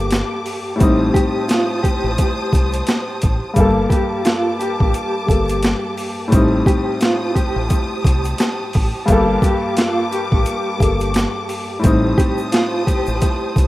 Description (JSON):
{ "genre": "hip hop, boom-bap hip-hop", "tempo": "87 BPM", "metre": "4/4", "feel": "swing 57% on 16ths", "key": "G minor", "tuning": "A4 = 440 Hz", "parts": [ { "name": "mellow electric guitar", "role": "melody", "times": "0.0-13.7 s", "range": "F4 to G4", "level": "-23 LUFS", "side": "right 1 dB", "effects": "tremolo, digital delay" }, { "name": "warm upright piano", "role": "accompaniment", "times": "0.0-13.7 s", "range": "G2 to A4", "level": "-20 LUFS", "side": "left 2 dB", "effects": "none" }, { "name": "warm studio string section", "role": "sustained chords", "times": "0.0-13.7 s", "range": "Bb3 to Eb6", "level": "-25 LUFS", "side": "equal", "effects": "none" }, { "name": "deep dub fingered electric bass", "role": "bass", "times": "0.0-13.7 s", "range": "G1 to C2", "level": "-21 LUFS", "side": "equal", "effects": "none" }, { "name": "boom bap sampler-style drum kit", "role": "drums", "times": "0.1-13.7 s", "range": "hi-hat, kick drum, snare drum", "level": "-18 LUFS", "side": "equal", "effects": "overdrive" }, { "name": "egg shaker", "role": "percussion", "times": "0.1-13.7 s", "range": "none", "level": "-40 LUFS", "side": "right 5 dB", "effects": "none" } ], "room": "small room ambience", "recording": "rough home demo mix, vinyl crackle", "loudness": "-15 LUFS", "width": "side -16 dB against mid", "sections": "0.0-13.7 A section", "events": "none", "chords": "0.0 Gmadd9; 0.8 Am7b5; 3.6 Gmadd9; 6.3 Am7b5; 9.1 Gmadd9; 11.8 Am7b5", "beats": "0.12 | 0.81 1.49 2.18 2.87 | 3.56 4.25 4.94 5.63 | 6.32 7.01 7.70 8.39 | 9.08 9.77 10.46 11.15 | 11.84 12.53 13.22" }